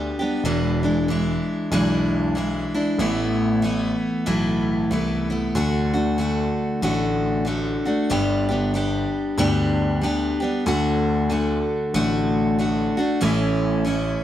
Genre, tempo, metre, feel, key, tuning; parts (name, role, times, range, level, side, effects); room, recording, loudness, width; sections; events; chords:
honky-tonk and classic country; 94 BPM; 4/4; swing 62% on 8ths; A4 = 442 Hz
picked steel-string acoustic guitar; accompaniment; 0.0-14.2 s; E2 to G4; -21 LUFS; equal
dark baby grand piano; bass; 0.0-14.1 s; E1 to D2; -25 LUFS; left 1 dB
light reverb; -20 LUFS; side -11 dB against mid
0.0-14.2 A section
0.4 E7; 3.0 Asus2; 5.5 D; 8.1 G; 10.7 D; 13.2 A